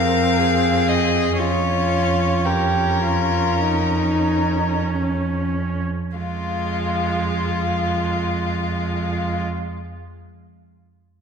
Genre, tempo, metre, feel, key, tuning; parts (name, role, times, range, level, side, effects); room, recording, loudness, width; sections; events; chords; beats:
classical, slow romantic movement for string quartet; free time; F minor; A4 = 439 Hz
rich violin; melody; 0.0-9.4 s; F4 to F5; -24 LUFS; left 6 dB
dark violin; second line; 0.0-9.4 s; Db4 to Bb4; -24 LUFS; left 1 dB
warm viola; accompaniment; 0.0-9.4 s; Ab3 to Db4; -26 LUFS; right 3 dB
rich cello; bass; 0.0-9.4 s; F2; -23 LUFS; right 3 dB
wet concert hall reverb, RT60 1.9 s; recorded in a church or concert hall; -18 LUFS; side -6 dB against mid
0.0-6.2 A section; 6.2-11.2 B section
slowing down 0.0-6.2
0.0 Fm; 1.4 Bbm/F; 6.2 Fm
free time